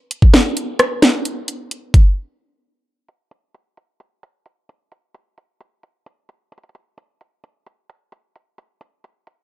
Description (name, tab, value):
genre	hip hop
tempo	131 BPM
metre	4/4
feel	half-time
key	none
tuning	none
part	trap drum kit	drums	0.1-9.4 s	hi-hat, kick drum, rim click, snare drum	-12 LUFS	equal	none
room	light reverb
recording	dark, warm production, low-pass filter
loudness	-13 LUFS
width	side -17 dB against mid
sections	0.0-3.1 A section; 3.1-9.4 B section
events	break 2.2-3.1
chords	none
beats	0.34 0.80 | 1.25 1.71 2.17 2.63 | 3.08 3.54 4.00 4.46 | 4.92 5.38 5.83 6.29 | 6.75 7.21 7.67 8.12 | 8.58 9.04